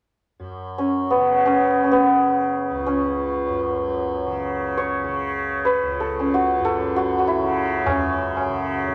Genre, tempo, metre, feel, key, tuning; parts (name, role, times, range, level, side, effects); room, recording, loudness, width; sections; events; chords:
indian classical, Hindustani; free time; C# raga malkauns; A4 = 440 Hz
tanpura; drone; 0.4-8.9 s; C#2 to C#3; -29 LUFS; equal
santur; melody; 0.8-8.9 s; B3 to C#5; -22 LUFS; equal
tabla; percussion; 7.9-8.9 s; -28 LUFS; equal
moderate small room reverb, RT60 0.5 s; -21 LUFS; mono
0.4-7.9 A section; 7.9-8.9 B section